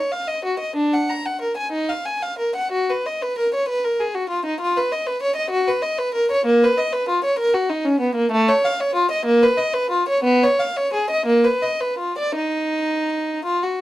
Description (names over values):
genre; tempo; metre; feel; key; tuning
classical, baroque-style suite movement for unaccompanied violin; 53-67 BPM (dotted quarters); 6/8; rubato; Eb minor; A4 = 442 Hz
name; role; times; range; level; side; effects
warm violin; solo; 0.0-13.8 s; A3 to Bb5; -18 LUFS; equal; none
room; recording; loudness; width
light reverb; dark, warm production; -18 LUFS; side -15 dB against mid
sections
0.0-13.8 A section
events
none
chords
none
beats
| 0.76 1.71 | 2.71 3.68 | 4.59 5.49 | 6.45 7.39 | 8.31 9.25 | 10.25 11.28 | 12.36 13.46